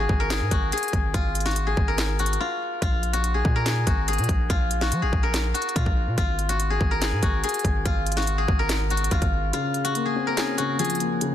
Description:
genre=hip hop, trap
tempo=143 BPM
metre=4/4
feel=half-time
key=unclear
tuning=A4 = 440 Hz
part: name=steel-string zither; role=melody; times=0.0-11.3 s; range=F4 to Bb4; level=-26 LUFS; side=left 2 dB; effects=low-pass filter, ping-pong delay
part: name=hard-hitting 808-style bass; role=bass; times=0.0-9.5 s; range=Ab1 to F3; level=-26 LUFS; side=equal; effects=none
part: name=trap drum kit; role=drums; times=0.1-11.3 s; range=handclaps, hi-hat, kick drum, snare drum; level=-25 LUFS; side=equal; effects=none
part: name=dark concert grand piano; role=accompaniment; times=9.5-11.3 s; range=Db3 to Db4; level=-25 LUFS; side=left 3 dB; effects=low-pass filter
room=little or no reverb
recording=dense, heavily limited modern master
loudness=-21 LUFS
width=side -10 dB against mid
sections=0.0-11.3 A section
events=break 2.4-2.8; kick muted 9.5-11.3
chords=0.0 Gbmaj9/Ab; 2.8 Bb5; 6.2 Gbmaj9/Ab; 9.5 Bbmadd9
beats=0.30 0.72 | 1.14 1.56 1.98 2.40 | 2.82 3.24 3.66 4.08 | 4.50 4.92 5.34 5.76 | 6.18 6.60 7.02 7.44 | 7.86 8.28 8.70 9.12 | 9.53 9.95 10.37 10.79 | 11.21

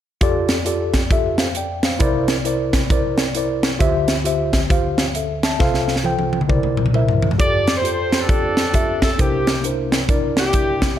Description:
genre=uptempo gospel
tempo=134 BPM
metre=4/4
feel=swing 63% on 8ths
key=F major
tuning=A4 = 438 Hz
part: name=mellow tine electric piano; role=accompaniment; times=0.2-10.9 s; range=C2 to A5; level=-20 LUFS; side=left 1 dB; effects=medium stereo tremolo
part: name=crisp fusion drum kit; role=drums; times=0.2-10.9 s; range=hi-hat, kick drum, snare drum, toms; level=-19 LUFS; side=equal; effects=none
part: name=vibraphone with soft mallets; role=melody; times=7.4-11.0 s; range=G4 to D5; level=-25 LUFS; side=right 2 dB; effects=none
part: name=warm horn section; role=melody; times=7.4-10.9 s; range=Bb3 to D5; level=-23 LUFS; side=left 1 dB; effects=none
room=light reverb, small room ambience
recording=none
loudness=-16 LUFS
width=side -11 dB against mid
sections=0.2-7.4 A section; 7.4-11.0 B section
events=drum fill 5.6-7.4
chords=0.2 F69; 2.0 C9; 3.8 Dm11; 5.6 F/C; 6.5 C9; 7.4 F69; 9.2 C9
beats=| 0.21 0.66 1.11 1.56 | 2.01 2.46 2.90 3.35 | 3.80 4.25 4.70 5.15 | 5.60 6.05 6.50 6.94 | 7.39 7.84 8.29 8.74 | 9.19 9.64 10.09 10.54 | 10.98

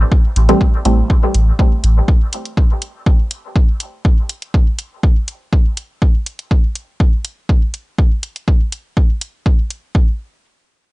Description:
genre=dub techno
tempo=122 BPM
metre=4/4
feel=straight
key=A minor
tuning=A4 = 440 Hz
part: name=warm sub bass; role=bass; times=0.0-2.0 s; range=A1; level=-12 LUFS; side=equal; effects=tube saturation, sidechain pumping
part: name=electronic kick drum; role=drums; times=0.1-10.1 s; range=none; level=-12 LUFS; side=equal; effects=none
part: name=electronic hi-hat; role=drums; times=0.4-9.8 s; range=none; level=-24 LUFS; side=equal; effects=overdrive
part: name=filtered dub chord stab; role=stabs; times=0.5-1.1 s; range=E3 to C4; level=-19 LUFS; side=right 1 dB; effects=chorus, phaser, cassette tape, sidechain pumping, dub echo
room=little or no reverb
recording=dry, gritty hardware recording, cassette tape, nothing above 10.4 kHz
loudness=-13 LUFS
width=side -20 dB against mid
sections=0.0-10.0 A section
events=none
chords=0.0 Am7; 10.0 N.C.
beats=| 0.12 0.61 1.10 1.59 | 2.08 2.57 3.07 3.56 | 4.05 4.54 5.03 5.53 | 6.02 6.51 7.00 7.49 | 7.98 8.48 8.97 9.46 | 9.95

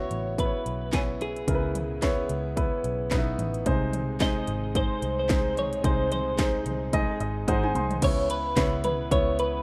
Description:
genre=piano-driven pop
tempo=110 BPM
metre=4/4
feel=swing 56% on 16ths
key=C# minor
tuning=A4 = 440 Hz
part: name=twelve-string electric guitar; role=melody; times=0.0-9.6 s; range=G#4 to D#5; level=-33 LUFS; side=equal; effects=tremolo
part: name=clear baby grand piano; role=accompaniment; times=0.0-9.6 s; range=B#2 to B#5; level=-31 LUFS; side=equal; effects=none
part: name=muted studio string section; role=sustained chords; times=0.0-9.6 s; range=B#2 to G#4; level=-46 LUFS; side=equal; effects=none
part: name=vintage muted picked electric bass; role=bass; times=0.0-9.6 s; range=G#1 to C#2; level=-34 LUFS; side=equal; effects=none
part: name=house drum kit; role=drums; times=0.1-9.5 s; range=crash cymbal, handclaps, hi-hat, kick drum, snare drum, toms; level=-31 LUFS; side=equal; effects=none
room=light reverb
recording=rough home demo mix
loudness=-27 LUFS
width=mono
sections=0.0-8.0 A section; 8.0-9.6 B section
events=grand piano fill 6.9-8.0; drum fill 7.5-8.0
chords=0.0 C#m7; 3.7 G#; 8.0 C#m7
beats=0.38 0.93 | 1.48 2.02 2.57 3.11 | 3.66 4.21 4.75 5.30 | 5.84 6.39 6.93 7.48 | 8.02 8.57 9.11

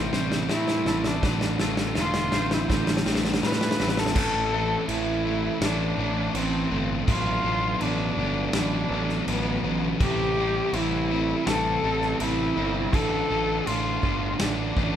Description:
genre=post-rock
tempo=82 BPM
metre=4/4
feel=straight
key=A minor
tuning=A4 = 440 Hz
part: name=twangy electric guitar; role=arpeggios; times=0.0-4.2 s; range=C4 to E5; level=-39 LUFS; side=right 3 dB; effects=spring reverb
part: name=twelve-string electric guitar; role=arpeggios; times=0.0-4.2 s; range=A2 to F4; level=-34 LUFS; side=equal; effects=none
part: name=crunchy overdriven guitar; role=riff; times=0.0-15.0 s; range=A2 to F4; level=-30 LUFS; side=left 7 dB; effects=none
part: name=sludgy distorted guitar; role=riff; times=0.0-15.0 s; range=A2 to D4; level=-32 LUFS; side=right 6 dB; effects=overdrive
part: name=fuzz picked electric bass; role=bass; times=0.0-15.0 s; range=E1 to A2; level=-29 LUFS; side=equal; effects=overdrive
part: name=loose indie drum kit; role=drums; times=0.1-14.9 s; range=crash cymbal, kick drum, snare drum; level=-29 LUFS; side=equal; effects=none
part: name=muted cello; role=melody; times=0.5-15.0 s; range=B3 to B4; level=-28 LUFS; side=equal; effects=none
room=moderate large studio reverb, RT60 1.2 s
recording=band playing live in one room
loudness=-22 LUFS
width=side -9 dB against mid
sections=0.0-4.2 A section; 4.2-15.0 B section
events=build-up 0.0-4.2; drum fill 0.0-4.2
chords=0.0 C6; 1.2 Dm7; 4.2 Am; 7.1 Bdim; 10.0 C6/A; 12.9 Dm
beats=0.50 | 1.24 1.97 2.70 3.43 | 4.16 4.89 5.62 6.35 | 7.08 7.81 8.54 9.27 | 10.01 10.74 11.47 12.20 | 12.94 13.67 14.40

